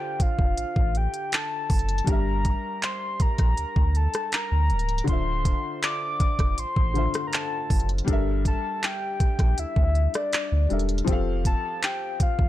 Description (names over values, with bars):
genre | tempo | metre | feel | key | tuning
contemporary R&B | 80 BPM | 4/4 | straight | G dorian | A4 = 440 Hz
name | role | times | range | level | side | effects
soft octave-layered synth lead | melody | 0.0-12.5 s | D5 to D6 | -29 LUFS | left 2 dB | chorus, ping-pong delay
felt-muted upright piano | accompaniment | 0.0-12.5 s | D3 to F5 | -32 LUFS | left 4 dB | none
warm sub bass | bass | 0.2-12.5 s | C#1 to D2 | -25 LUFS | equal | none
smooth R&B drum kit | drums | 0.2-12.5 s | handclaps, hi-hat, kick drum, rim click | -24 LUFS | equal | none
room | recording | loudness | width
digital ambience | dark, warm production | -22 LUFS | side -14 dB against mid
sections
0.0-12.5 A section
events
none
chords
0.0 Dm7; 2.1 Gm6; 5.1 Dm9; 8.1 Gm69; 11.1 Fadd9